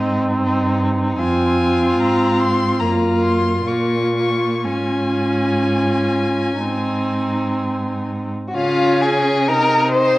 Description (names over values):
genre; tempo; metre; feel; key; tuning
classical, slow romantic movement for string quartet; 58-75 BPM; 4/4; rubato; Db major; A4 = 441 Hz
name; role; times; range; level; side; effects
rich violin; melody; 0.0-10.2 s; Eb5 to Db6; -25 LUFS; left 4 dB; none
rich violin; second line; 0.0-10.2 s; Eb4 to C5; -20 LUFS; left 1 dB; none
rich viola; accompaniment; 0.0-10.2 s; Bb3 to Eb4; -21 LUFS; right 1 dB; none
clear cello; bass; 0.0-10.2 s; F2 to Db3; -23 LUFS; right 2 dB; none
room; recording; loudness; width
wet recital hall reverb, RT60 1.3 s; worn, warbling old tape, cassette tape, warbly pitch drift; -16 LUFS; side -18 dB against mid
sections
0.0-8.6 A section; 8.6-10.2 B section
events
none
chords
0.0 Ab; 1.2 Fm; 2.8 Gbmaj7; 4.7 Db/Ab; 6.6 Ab; 8.6 Bbm11